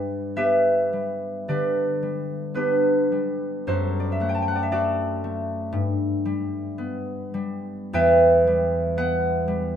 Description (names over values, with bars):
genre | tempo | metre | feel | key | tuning
classical, solo harp piece | 49-61 BPM | 4/4 | rubato | G major | A4 = 445 Hz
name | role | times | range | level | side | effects
concert harp | solo | 0.0-9.8 s | E2 to A5 | -21 LUFS | equal | none
room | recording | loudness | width
moderate stone room reverb, RT60 1.5 s | close, detailed microphones | -21 LUFS | side -9 dB against mid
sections
0.0-9.8 A section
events
none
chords
0.0 G; 3.7 D7/F#; 5.8 G; 7.9 Em